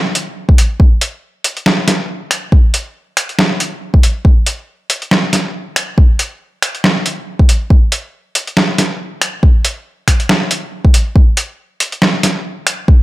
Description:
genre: dubstep.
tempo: 139 BPM.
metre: 4/4.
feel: swing 56% on 16ths, half-time.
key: none.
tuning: none.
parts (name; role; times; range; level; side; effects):
trip hop sampler-style drum kit; drums; 0.2-12.8 s; finger snaps, hi-hat, snare drum; -14 LUFS; equal; overdrive.
electronic kick drum; drums; 0.5-13.0 s; none; -8 LUFS; equal; none.
room: light reverb.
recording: none.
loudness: -12 LUFS.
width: side -18 dB against mid.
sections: 0.0-13.0 A section.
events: none.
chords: none.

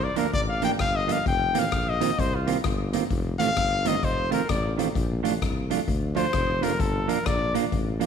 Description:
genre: ska.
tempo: 130 BPM.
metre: 4/4.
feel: swing 62% on 8ths.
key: unclear.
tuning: A4 = 440 Hz.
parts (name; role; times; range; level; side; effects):
clear trumpet; melody; 0.0-7.5 s; F4 to G5; -27 LUFS; left 3 dB; none.
mellow tuba; bass; 0.0-8.1 s; F1 to D2; -29 LUFS; equal; none.
mellow electric guitar; accompaniment; 0.2-8.1 s; Eb3 to F4; -28 LUFS; right 10 dB; none.
street-band drum kit; drums; 0.2-8.1 s; hi-hat, kick drum, rim click; -29 LUFS; left 2 dB; none.
room: moderate echo chamber reverb, RT60 1.7 s, small room ambience.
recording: 1960s-style stereo.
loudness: -22 LUFS.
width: side -7 dB against mid.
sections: 0.0-8.1 A section.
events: trumpet solo 0.0-8.1.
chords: 0.0 Gm7; 1.3 F7sus4; 3.1 F7; 5.0 Bbmaj7; 6.8 Gm7.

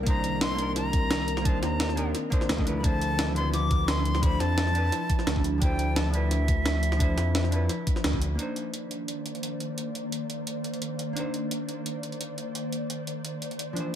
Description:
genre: liquid drum and bass.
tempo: 173 BPM.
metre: 4/4.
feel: straight.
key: C dorian.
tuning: A4 = 435 Hz.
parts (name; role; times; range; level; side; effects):
hollow-body jazz guitar; accompaniment; 0.0-14.0 s; E3 to Eb5; -34 LUFS; equal; dub echo.
ethereal airy pad; sustained chords; 0.0-14.0 s; D3 to D5; -34 LUFS; equal; ensemble chorus, built-in reverb, sidechain pumping.
smooth synth bass; bass; 0.0-8.4 s; C2 to F2; -27 LUFS; equal; none.
concert flute; melody; 0.1-8.0 s; E5 to D6; -32 LUFS; left 1 dB; dub echo.
breakbeat sampler-style drum kit; drums; 0.1-13.8 s; hi-hat, snare drum; -32 LUFS; equal; none.
electronic kick drum; drums; 0.1-8.2 s; none; -26 LUFS; equal; none.
room: light reverb, digital ambience.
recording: none.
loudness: -25 LUFS.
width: side -10 dB against mid.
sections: 0.0-8.4 A section; 8.4-14.0 B section.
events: drop 0.0-8.4; band accent 8.0.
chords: 0.0 Cm9; 2.7 Dm9; 8.4 Cm9.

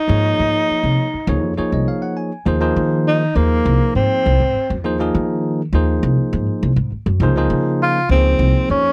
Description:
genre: jazz.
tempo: 101 BPM.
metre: 4/4.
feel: straight.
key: unclear.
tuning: A4 = 440 Hz.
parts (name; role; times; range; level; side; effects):
breathy tenor saxophone; melody; 0.0-8.9 s; Bb3 to F4; -20 LUFS; equal; slapback echo.
bell-like tine electric piano; accompaniment; 0.1-8.9 s; F3 to Ab5; -23 LUFS; equal; none.
upright bass; bass; 0.1-8.8 s; C2 to Eb3; -20 LUFS; equal; none.
room: little or no reverb.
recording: dry, close 1970s-style studio recording.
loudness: -17 LUFS.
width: mono.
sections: 0.0-2.5 A section; 2.5-8.9 B section.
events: tine electric piano fill 1.3-2.5; break 1.9-2.5; tenor saxophone solo 2.5-8.9.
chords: 0.1 Absus4; 1.3 Dbmaj9; 2.5 Ebsus2; 7.2 Dbmaj9.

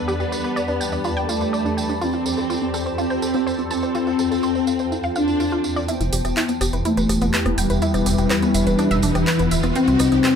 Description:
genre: melodic techno.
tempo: 124 BPM.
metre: 4/4.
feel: straight.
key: E phrygian.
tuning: A4 = 440 Hz.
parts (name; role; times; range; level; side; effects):
expressive synth lead; melody; 0.0-10.4 s; E3 to D4; -22 LUFS; left 2 dB; lush chorus, digital delay.
warm symphonic violin section; second line; 0.0-5.8 s; A3 to D4; -30 LUFS; left 2 dB; digital delay.
sweeping resonant pad; sustained chords; 0.0-10.4 s; C3 to B4; -29 LUFS; equal; chorus.
swarming drone; drone; 0.0-10.4 s; E2; -30 LUFS; equal; built-in reverb.
granular cloud pad; texture; 0.0-10.4 s; Eb4 to Eb6; -30 LUFS; equal; built-in reverb.
analog pluck; arpeggios; 0.1-10.3 s; B3 to A5; -26 LUFS; equal; chorus, digital delay.
tambourine; percussion; 0.1-10.3 s; none; -33 LUFS; right 4 dB; none.
techno drum kit; drums; 5.9-10.3 s; handclaps, hi-hat, rim click; -26 LUFS; equal; none.
riser; sound effects; 7.2-10.4 s; none; -30 LUFS; equal; none.
swelling detuned saw bass; bass; 6.0-10.2 s; D1 to C2; -24 LUFS; equal; none.
room: moderate digital room reverb, RT60 1.3 s.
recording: dark, warm production.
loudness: -18 LUFS.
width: side -7 dB against mid.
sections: 0.0-5.9 A section; 5.9-10.4 B section.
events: build-up 5.9-10.4; filter sweep on synth arpeggio sound 5.9-10.4; filter sweep on analog synth pad 5.9-10.4; riser 7.2-10.4.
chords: 0.0 Gadd9; 2.0 Fadd9; 5.9 Em; 9.8 Cm.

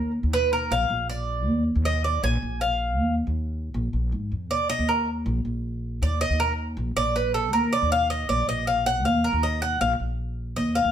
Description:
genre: latin.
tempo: 158 BPM.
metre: 4/4.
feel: straight.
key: unclear.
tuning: A4 = 441 Hz.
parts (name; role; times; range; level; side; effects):
Cuban tres; arpeggios; 0.0-10.9 s; A4 to Ab5; -24 LUFS; equal; none.
upright bass; bass; 0.0-10.9 s; Bb1 to Ab2; -25 LUFS; equal; none.
room: moderate studio reverb, RT60 0.7 s.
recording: heard from further back in the room.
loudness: -22 LUFS.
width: side -9 dB against mid.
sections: 0.0-10.9 A section.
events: Cuban tres solo 0.0-10.9.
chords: 0.0 Bmaj7/D#; 0.7 Bb; 1.5 N.C.; 2.2 Bb5; 3.0 N.C.; 3.7 Bb5; 4.5 Bbadd11/Eb; 5.3 N.C.; 6.0 Bbadd11/Eb; 6.8 Bbmaj7; 7.5 Bbadd11/Eb; 8.3 Bbadd11; 9.0 Ebmadd9; 9.8 Bb5.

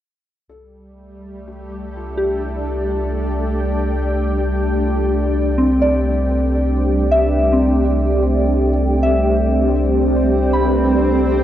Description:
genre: ambient.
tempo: 62 BPM.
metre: 4/4.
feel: straight.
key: C major.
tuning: A4 = 439 Hz.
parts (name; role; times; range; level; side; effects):
felt-muted upright piano; melody; 0.5-11.4 s; E4 to D5; -36 LUFS; left 4 dB; none.
shimmering ambient pad; sustained chords; 1.2-11.4 s; G3 to G4; -19 LUFS; equal; chorus, built-in reverb.
warm sub bass; bass; 0.5-11.4 s; C2; -20 LUFS; equal; none.
soft synth bell; arpeggios; 2.2-11.4 s; C4 to B5; -20 LUFS; left 1 dB; chorus, tape echo.
room: wet spring reverb, RT60 2.3 s.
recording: home recording on cassette.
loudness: -15 LUFS.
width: side -11 dB against mid.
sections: 0.5-11.4 A section.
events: none.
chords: 0.5 C.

